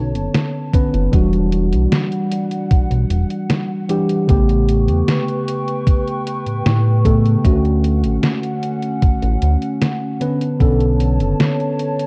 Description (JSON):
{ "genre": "vaporwave", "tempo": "76 BPM", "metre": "4/4", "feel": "straight", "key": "D major", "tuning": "A4 = 441 Hz", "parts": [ { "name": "tine electric piano", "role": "accompaniment", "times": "0.0-12.1 s", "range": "C#3 to B4", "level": "-22 LUFS", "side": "equal", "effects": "analog chorus, analog delay" }, { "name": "warbly tape-like pad", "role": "sustained chords", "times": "0.0-12.1 s", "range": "G3 to C#6", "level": "-30 LUFS", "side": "equal", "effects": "chorus, built-in reverb" }, { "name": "chorused synth bass", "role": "bass", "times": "0.0-11.3 s", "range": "E1 to A2", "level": "-19 LUFS", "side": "equal", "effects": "tube saturation" }, { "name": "detuned 8-bit digital drum machine", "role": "drums", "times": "0.2-12.1 s", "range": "hi-hat, snare drum", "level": "-22 LUFS", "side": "equal", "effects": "studio reverb" }, { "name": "electronic kick drum", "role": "drums", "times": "0.7-10.8 s", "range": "none", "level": "-17 LUFS", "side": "equal", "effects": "studio reverb" } ], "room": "digital ambience", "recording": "dark, warm production, cassette tape", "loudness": "-17 LUFS", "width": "mono", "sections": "0.0-12.1 A section", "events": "none", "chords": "0.0 Bm9; 1.1 Em9; 4.3 A9; 7.4 Dmaj7; 10.2 Bm9" }